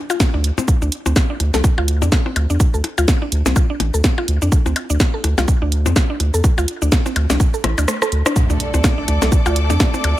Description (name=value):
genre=minimal techno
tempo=125 BPM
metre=4/4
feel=swing 58% on 16ths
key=D minor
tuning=A4 = 438 Hz
part: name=mallet-like synth pluck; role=riff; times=0.1-10.0 s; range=A3 to A4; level=-24 LUFS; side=equal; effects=chorus, sidechain pumping, dub echo
part: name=house drum kit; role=drums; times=0.1-10.2 s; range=hi-hat, rim click, shaker, snare drum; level=-22 LUFS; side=right 1 dB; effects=none
part: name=percussion blips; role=percussion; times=0.1-10.2 s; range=none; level=-26 LUFS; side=left 6 dB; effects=dub echo
part: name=electronic kick drum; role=drums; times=0.2-9.9 s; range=none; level=-16 LUFS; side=equal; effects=none
part: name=saturated sub bass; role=bass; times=0.3-10.1 s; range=A1 to F2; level=-17 LUFS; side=equal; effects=sidechain pumping
part: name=impact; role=sound effects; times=8.4-10.2 s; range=none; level=-28 LUFS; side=equal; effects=none
part: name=rich symphonic string section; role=texture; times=8.4-10.2 s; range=A3 to D6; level=-23 LUFS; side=equal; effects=sidechain pumping
room=digital ambience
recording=none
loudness=-14 LUFS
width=side -14 dB against mid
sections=0.0-8.4 A section; 8.4-10.2 B section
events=drum fill 7.6-8.4; kick drops out 7.9-8.4; drop 8.4-10.2; impact 8.4-10.2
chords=0.0 D5